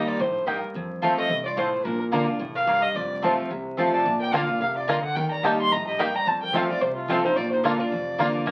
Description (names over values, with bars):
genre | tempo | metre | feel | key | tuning
bluegrass | 218 BPM | 4/4 | swing 55% on 8ths | Bb major | A4 = 441 Hz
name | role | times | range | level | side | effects
dark fiddle | melody | 0.0-8.4 s | F4 to C6 | -28 LUFS | equal | none
lap resonator guitar | second line | 0.0-8.4 s | A3 to Eb5 | -37 LUFS | equal | none
picked steel-string acoustic guitar | accompaniment | 0.0-8.5 s | F2 to G4 | -30 LUFS | equal | none
upright bass | bass | 0.0-8.5 s | F1 to F2 | -44 LUFS | equal | none
mandolin | stabs | 0.5-8.3 s | Bb3 to Bb5 | -30 LUFS | equal | none
bluegrass banjo | melody | 4.3-8.5 s | Bb3 to G4 | -29 LUFS | equal | none
room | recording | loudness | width
wet small room reverb, RT60 0.5 s | very old 78 rpm record, vinyl crackle | -24 LUFS | mono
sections
0.0-8.5 A section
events
none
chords
0.0 Eb; 0.7 F; 1.9 Bb; 3.0 F; 4.1 Bb; 5.2 Eb; 6.3 F; 7.4 Bb